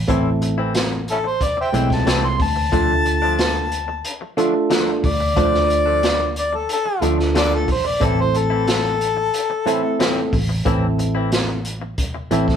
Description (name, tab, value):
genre	straight-eighth soul blues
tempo	91 BPM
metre	4/4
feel	straight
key	A minor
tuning	A4 = 440 Hz
part	vintage muted fingered electric bass	bass	0.0-12.6 s	A1 to D2	-22 LUFS	equal	none
part	bell-like tine electric piano	accompaniment	0.1-12.6 s	G#3 to C5	-22 LUFS	right 3 dB	none
part	direct-recorded clean electric guitar	stabs	0.1-12.5 s	A2 to E4	-26 LUFS	left 5 dB	none
part	crunchy breakbeat drum kit	drums	0.1-12.6 s	hi-hat, kick drum, snare drum	-23 LUFS	equal	none
part	warm harmonica	melody	1.1-10.3 s	C#4 to C6	-20 LUFS	left 2 dB	overdrive
room	moderate studio reverb, RT60 0.7 s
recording	band playing live in one room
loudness	-17 LUFS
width	side -8 dB against mid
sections	0.0-12.6 A section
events	harmonica solo 0.0-12.6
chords	0.0 Am; 2.7 Dm; 8.0 Am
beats	| 0.09 0.75 1.41 2.07 | 2.73 3.39 4.05 4.71 | 5.37 6.03 6.69 7.35 | 8.01 8.67 9.34 10.00 | 10.66 11.32 11.98